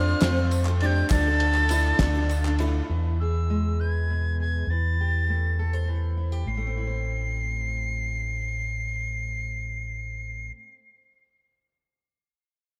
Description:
indie folk with a building arrangement; 67 BPM (dotted quarters); 6/8; straight; A minor; A4 = 443 Hz
mellow tin whistle; melody; 0.0-10.5 s; E6 to C7; -32 LUFS; equal; tape echo
rich fiddle; second line; 0.0-2.6 s; F4 to A4; -38 LUFS; equal
picked twelve-string acoustic guitar; accompaniment; 0.0-2.9 s; D3 to A4; -34 LUFS; equal; tape echo
bright tonewheel organ; sustained chords; 0.0-2.9 s; D3 to A4; -43 LUFS; equal
warm upright piano; arpeggios; 0.0-2.9 s; C4 to E4; -32 LUFS; equal; tape echo
fingered electric bass; bass; 0.0-10.5 s; A1 to F2; -28 LUFS; equal
tambourine; percussion; 0.1-2.7 s; -46 LUFS; equal; tape echo
cloth-damped thuddy drum kit; drums; 0.2-2.7 s; kick drum, ride cymbal, snare drum; -31 LUFS; equal; tape echo
group handclap; percussion; 0.2-2.6 s; -43 LUFS; equal
fingerpicked steel-string acoustic guitar; accompaniment; 2.9-10.9 s; A2 to C5; -39 LUFS; equal; tape echo
little or no reverb; echo-heavy mix; -26 LUFS; mono
0.0-2.9 A section; 2.9-6.5 B section; 6.5-10.1 C section
0.0 F; 1.1 Dm; 2.9 E; 4.7 Am7/E; 6.5 Am

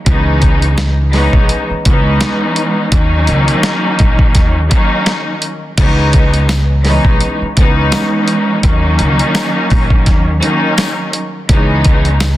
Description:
hip hop, boom-bap hip-hop; 84 BPM; 4/4; swing 57% on 16ths; C# dorian; A4 = 440 Hz
warm studio string section; accompaniment; 0.1-12.3 s; D#3 to D#4; -14 LUFS; equal; cassette tape, high-pass filter, low-pass filter
upright bass; bass; 0.1-12.4 s; A#1 to D#2; -14 LUFS; equal
dusty soul sampler-style drum kit; drums; 0.1-12.4 s; crash cymbal, hi-hat, kick drum, snare drum; -13 LUFS; equal
tambourine; percussion; 6.5-12.4 s; -31 LUFS; left 6 dB
small room ambience; dense, heavily limited modern master; -10 LUFS; side -15 dB against mid
0.0-5.8 A section; 5.8-12.4 A section
0.1 C#m9; 2.9 D#m7; 5.8 C#m9; 8.6 D#m7; 11.5 C#m9

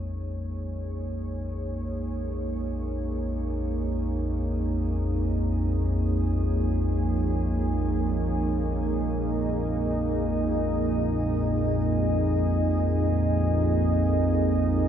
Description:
dark ambient drone; free time; Bb minor; A4 = 437 Hz
dark analog pad; sustained chords; 0.0-14.9 s; Bb3 to Eb5; -28 LUFS; right 2 dB; chorus, shimmer reverb
deep rumbling drone; drone; 0.0-14.9 s; Bb1 to F2; -26 LUFS; equal; built-in reverb
moderate plate reverb, RT60 2.5 s; -24 LUFS; side -9 dB against mid
0.0-14.9 A section
fade-in on analog synth pad 0.0-14.9
0.0 Bbm

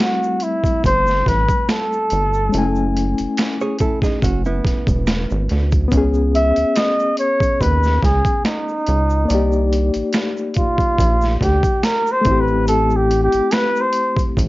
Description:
R&B, neo-soul; 71 BPM; 4/4; swing 54% on 16ths; A4 = 435 Hz
mellow flugelhorn; melody; 0.0-14.2 s; D#4 to E5; -18 LUFS; equal
reed electric piano; accompaniment; 0.0-14.5 s; G3 to G#5; -22 LUFS; left 3 dB; overdrive, fast tremolo
boom bap sampler-style drum kit; drums; 0.0-14.5 s; hi-hat, kick drum, snare drum; -20 LUFS; equal; overdrive
finger snaps and tube shaker; percussion; 0.0-14.5 s; -33 LUFS; right 5 dB
rubbery square bass; bass; 0.8-14.5 s; E1 to D#2; -18 LUFS; equal
hollow-body jazz guitar; second line; 3.6-5.7 s; B3 to C#5; -24 LUFS; right 3 dB
little or no reverb; worn, warbling old tape, cassette tape, warbly pitch drift, nothing above 7.5 kHz; -15 LUFS; side -19 dB against mid
0.0-14.5 A section
flugelhorn solo 0.0-14.5
0.0 Am7; 2.5 F#m9; 5.9 C#sus2; 9.3 Cm9; 12.3 Am9

